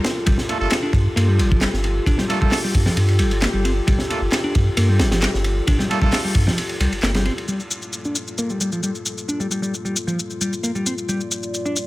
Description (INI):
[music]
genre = breakbeat, breaks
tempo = 133 BPM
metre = 4/4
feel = straight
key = G minor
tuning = A4 = 436 Hz
[part]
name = dark analog pad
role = sustained chords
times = 0.0-11.9 s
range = G3 to D5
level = -27 LUFS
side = left 1 dB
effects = chorus, sidechain pumping
[part]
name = modern bright picked electric bass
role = riff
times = 0.0-11.8 s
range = F3 to D4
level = -24 LUFS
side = left 1 dB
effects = overdrive, low-pass filter, ping-pong delay
[part]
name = crunchy breakbeat drum kit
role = drums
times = 0.0-7.5 s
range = hi-hat, kick drum, ride cymbal, snare drum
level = -21 LUFS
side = equal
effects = none
[part]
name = saturated sub bass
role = bass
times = 0.3-7.3 s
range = G1 to G2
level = -19 LUFS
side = equal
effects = tube saturation
[part]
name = brilliant horn section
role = stabs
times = 0.5-6.2 s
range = A3 to A4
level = -27 LUFS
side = right 3 dB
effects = vintage 12-bit sampler grit, ping-pong delay
[part]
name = electronic handclaps and shaker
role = drums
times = 0.7-11.9 s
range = none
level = -26 LUFS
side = left 1 dB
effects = none
[sound]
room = studio ambience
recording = none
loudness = -18 LUFS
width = side -18 dB against mid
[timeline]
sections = 0.0-7.5 A section; 7.5-11.9 B section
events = filter sweep on picked electric bass 7.5-11.9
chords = 0.0 Gm9